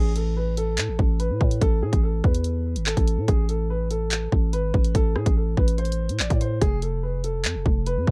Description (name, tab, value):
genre	hip hop, drill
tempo	144 BPM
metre	4/4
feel	half-time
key	unclear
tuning	A4 = 441 Hz
part	dark concert grand piano	melody	0.0-8.1 s	G#4 to D5	-32 LUFS	equal	none
part	growling 808-style bass	bass	0.0-8.1 s	F1 to A2	-27 LUFS	equal	none
part	drill drum kit	drums	0.2-8.1 s	handclaps, hi-hat, kick drum, rim click	-25 LUFS	equal	none
room	little or no reverb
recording	dark, warm production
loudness	-23 LUFS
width	mono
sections	0.0-8.1 A section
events	none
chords	0.0 N.C.; 6.6 F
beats	0.36 0.78 1.20 | 1.61 2.03 2.45 2.87 | 3.28 3.70 4.12 4.53 | 4.95 5.37 5.78 6.20 | 6.62 7.03 7.45 7.87